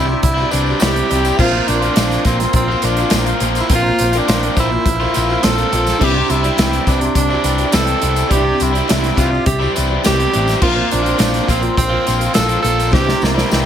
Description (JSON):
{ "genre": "folk rock and heartland rock", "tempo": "104 BPM", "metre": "4/4", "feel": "straight", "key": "C mixolydian", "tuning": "A4 = 439 Hz", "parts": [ { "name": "clear tenor saxophone", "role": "melody", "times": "0.0-13.7 s", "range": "Bb3 to A4", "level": "-19 LUFS", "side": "right 2 dB", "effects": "none" }, { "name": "picked acoustic archtop guitar", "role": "accompaniment", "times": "0.0-13.7 s", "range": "Bb3 to D5", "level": "-25 LUFS", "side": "left 5 dB", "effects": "none" }, { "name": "reed electric piano", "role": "accompaniment", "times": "0.0-13.7 s", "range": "Bb3 to D5", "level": "-29 LUFS", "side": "right 6 dB", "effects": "none" }, { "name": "tonewheel organ", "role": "sustained chords", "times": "0.0-13.7 s", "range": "Bb3 to C6", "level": "-29 LUFS", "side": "equal", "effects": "none" }, { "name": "overdriven electric guitar", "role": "riff", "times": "0.0-13.7 s", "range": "Bb2 to F4", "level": "-19 LUFS", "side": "equal", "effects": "none" }, { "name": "picked electric bass", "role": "bass", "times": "0.0-13.7 s", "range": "A1 to C2", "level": "-20 LUFS", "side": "equal", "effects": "none" }, { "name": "tambourine", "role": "percussion", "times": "0.1-13.6 s", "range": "none", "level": "-33 LUFS", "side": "left 5 dB", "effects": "none" }, { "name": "natural country drum kit", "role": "drums", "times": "0.2-13.7 s", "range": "crash cymbal, hi-hat, kick drum, snare drum", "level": "-19 LUFS", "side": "equal", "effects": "none" } ], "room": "little or no reverb", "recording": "none", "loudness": "-13 LUFS", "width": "side -9 dB against mid", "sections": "0.0-13.7 A section", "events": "drum fill 12.9-13.7", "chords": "0.0 Cadd9; 1.4 Bbsus2; 6.0 Cadd9; 10.6 Bbsus2; 12.9 Cadd9", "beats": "0.24 0.81 | 1.39 1.97 2.54 3.12 | 3.70 4.28 4.85 5.43 | 6.00 6.58 7.16 7.74 | 8.31 8.89 9.47 10.04 | 10.62 11.20 11.78 12.36 | 12.93 13.51" }